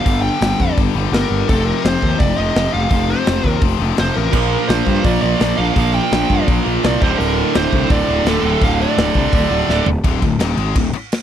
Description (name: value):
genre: heavy metal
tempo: 168 BPM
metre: 4/4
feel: straight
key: D phrygian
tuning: A4 = 443 Hz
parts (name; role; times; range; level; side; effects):
- high-gain lead guitar; melody; 0.0-9.8 s; A4 to G5; -21 LUFS; right 3 dB; distortion
- heavy high-gain guitar; riff; 0.0-11.0 s; D2 to Bb3; -21 LUFS; left 15 dB; distortion
- fuzz picked electric bass; bass; 0.1-11.0 s; D1 to G2; -19 LUFS; equal; overdrive
- modern studio drum kit; drums; 0.1-11.2 s; crash cymbal, hi-hat, kick drum, snare drum, toms; -19 LUFS; equal; none
- tight distorted guitar; riff; 4.3-9.9 s; D2 to Bb3; -20 LUFS; right 18 dB; distortion
room: little or no reverb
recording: dry, close 1970s-style studio recording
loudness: -14 LUFS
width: side -10 dB against mid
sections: 0.0-10.0 A section; 10.0-11.2 B section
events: drum fill 9.7-10.0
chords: 0.0 Gm; 1.5 F5; 4.3 Bb; 7.0 D5